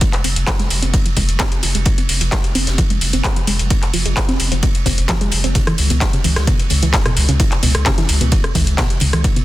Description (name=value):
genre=driving peak-time techno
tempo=130 BPM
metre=4/4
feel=straight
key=F harmonic minor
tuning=A4 = 442 Hz
part: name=wide unison pluck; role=riff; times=0.0-9.4 s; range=B2 to C4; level=-23 LUFS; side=equal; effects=sidechain pumping, tape echo
part: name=big rock drum kit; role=drums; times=0.0-9.4 s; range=ride cymbal, snare drum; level=-27 LUFS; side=right 4 dB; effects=sidechain pumping on cymbals, high-pass filter on cymbals, high-pass filter on snare, high-pass filter on room
part: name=electronic kick drum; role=drums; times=0.0-9.3 s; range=none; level=-17 LUFS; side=equal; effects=none
part: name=techno drum kit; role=drums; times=0.0-9.4 s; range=handclaps, hi-hat, rim click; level=-20 LUFS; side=left 1 dB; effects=sidechain pumping on hats, sidechain pumping on cymbals
part: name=saturated sub bass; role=bass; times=0.2-9.2 s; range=F1 to Db2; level=-18 LUFS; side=equal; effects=overdrive, sidechain pumping, low-pass filter
room=light reverb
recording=dense, heavily limited modern master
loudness=-14 LUFS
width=side -16 dB against mid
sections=0.0-9.4 A section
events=filter sweep on synth arpeggio sound 0.0-9.4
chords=0.0 Fm; 5.6 Dbm